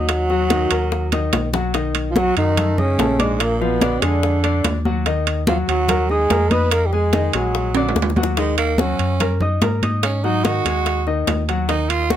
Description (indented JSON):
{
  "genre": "Afro-Cuban jazz",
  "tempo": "145 BPM",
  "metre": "4/4",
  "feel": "straight",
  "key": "Eb minor",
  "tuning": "A4 = 435 Hz",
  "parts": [
    { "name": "dark trombone", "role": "melody", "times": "0.0-8.1 s", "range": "Ab3 to Cb5", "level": "-21 LUFS", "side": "equal", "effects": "none" },
    { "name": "growling tenor saxophone", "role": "second line", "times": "0.0-12.2 s", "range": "Ab2 to Gb4", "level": "-24 LUFS", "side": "right 6 dB", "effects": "none" },
    { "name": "clear baby grand piano", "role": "accompaniment", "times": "0.0-12.2 s", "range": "D3 to Eb6", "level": "-24 LUFS", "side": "left 4 dB", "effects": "none" },
    { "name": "fingered electric bass", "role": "bass", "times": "0.0-12.2 s", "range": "Bb1 to Ab2", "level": "-22 LUFS", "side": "equal", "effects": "none" },
    { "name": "bongos", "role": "percussion", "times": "0.1-12.2 s", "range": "none", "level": "-25 LUFS", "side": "left 8 dB", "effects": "none" },
    { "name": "congas", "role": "percussion", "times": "0.1-12.2 s", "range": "none", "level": "-23 LUFS", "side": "left 1 dB", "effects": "none" },
    { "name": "timbales", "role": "percussion", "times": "0.1-12.2 s", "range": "none", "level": "-24 LUFS", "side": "right 9 dB", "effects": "none" }
  ],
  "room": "little or no reverb",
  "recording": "close, detailed microphones",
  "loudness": "-16 LUFS",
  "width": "side -10 dB against mid",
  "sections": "0.0-8.4 A section; 8.4-12.2 B section",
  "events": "drum fill 1.1-1.7, 7.8-8.4; tenor saxophone solo 8.4-12.2",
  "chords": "0.0 Ebm; 1.7 B7; 3.4 Bb7b9; 5.1 Ebm; 6.7 Gbmaj13; 7.5 Bbaug7; 8.4 Ebm7; 10.0 Ab5"
}